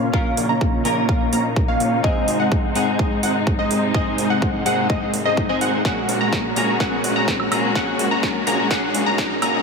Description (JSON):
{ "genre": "EDM, festival progressive house", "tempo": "126 BPM", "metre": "4/4", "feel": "straight", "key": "unclear", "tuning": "A4 = 440 Hz", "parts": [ { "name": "direct-recorded clean electric guitar", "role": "accompaniment", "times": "0.0-9.6 s", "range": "Ab2 to Bb4", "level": "-25 LUFS", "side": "left 3 dB", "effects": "analog chorus, sidechain pumping, tape echo" }, { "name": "clear studio string section", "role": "sustained chords", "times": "0.0-9.6 s", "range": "Bb2 to Gb4", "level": "-29 LUFS", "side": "left 2 dB", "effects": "sidechain pumping, low-pass filter" }, { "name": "plucky unison lead", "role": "arpeggios", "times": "0.0-9.6 s", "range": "Eb5 to Bb5", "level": "-24 LUFS", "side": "left 1 dB", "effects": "phaser, sidechain pumping, tape echo" }, { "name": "dense compressed supersaw", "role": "riff", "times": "0.0-9.6 s", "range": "Ab3 to Bb5", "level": "-23 LUFS", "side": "right 1 dB", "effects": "sidechain pumping, low-pass filter, tape echo" }, { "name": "fat analog bass", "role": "bass", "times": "0.0-9.6 s", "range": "Ab1 to Bb1", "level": "-30 LUFS", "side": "equal", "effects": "sidechain pumping, high-pass filter" }, { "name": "riser", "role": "sound effects", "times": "4.5-9.6 s", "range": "none", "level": "-31 LUFS", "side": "equal", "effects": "none" }, { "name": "electronic kick drum", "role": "drums", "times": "0.1-9.3 s", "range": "none", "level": "-22 LUFS", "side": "equal", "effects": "none" }, { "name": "big-room dance drum kit", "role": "drums", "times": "0.4-9.5 s", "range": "hi-hat, snare drum, woodblock", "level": "-27 LUFS", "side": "right 3 dB", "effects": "high-pass filter on hats, high-pass filter on snare, high-pass filter on perc" } ], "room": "light reverb", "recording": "high-pass filter", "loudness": "-17 LUFS", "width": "side -4 dB against mid", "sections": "0.0-9.6 A section", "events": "build-up 0.0-9.6; filter sweep on supersaw synth 0.0-9.6; filter sweep on digital synth lead 0.0-9.6; filter sweep on string section 0.0-9.6; filter sweep 0.0-9.6; drum fill 5.8-9.6", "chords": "0.0 Bbm; 2.0 Ab; 5.8 Gbadd9/Bb" }